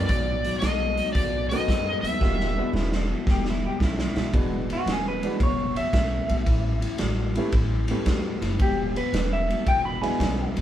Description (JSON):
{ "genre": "electric blues shuffle", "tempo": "113 BPM", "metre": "4/4", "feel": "swing 68% on 8ths", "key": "E mixolydian", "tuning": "A4 = 441 Hz", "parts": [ { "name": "overdriven slide guitar", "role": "melody", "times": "0.0-2.7 s", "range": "D5 to E5", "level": "-27 LUFS", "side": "left 1 dB", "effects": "none" }, { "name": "clear upright piano", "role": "accompaniment", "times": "0.0-10.6 s", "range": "D#3 to G4", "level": "-31 LUFS", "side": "right 2 dB", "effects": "none" }, { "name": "electric guitar through a small old amp", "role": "riff", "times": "0.0-10.6 s", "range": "E2 to G#3", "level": "-31 LUFS", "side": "left 6 dB", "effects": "none" }, { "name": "upright bass", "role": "bass", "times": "0.0-10.6 s", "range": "E1 to F#2", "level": "-28 LUFS", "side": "equal", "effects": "none" }, { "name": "raw garage drum kit", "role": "drums", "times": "0.1-10.6 s", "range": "hi-hat, kick drum, ride cymbal, snare drum", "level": "-26 LUFS", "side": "right 1 dB", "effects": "none" }, { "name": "electric guitar through a small old amp", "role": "second line", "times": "2.8-10.5 s", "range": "D4 to B5", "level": "-28 LUFS", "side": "right 1 dB", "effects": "none" } ], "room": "light reverb", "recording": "band playing live in one room", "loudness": "-22 LUFS", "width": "side -11 dB against mid", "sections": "0.0-4.3 A section; 4.3-10.6 B section", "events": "drum fill 2.2-4.3; clean electric guitar solo 4.3-10.6", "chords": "0.0 B7; 2.2 E7; 6.5 A7; 8.6 E7" }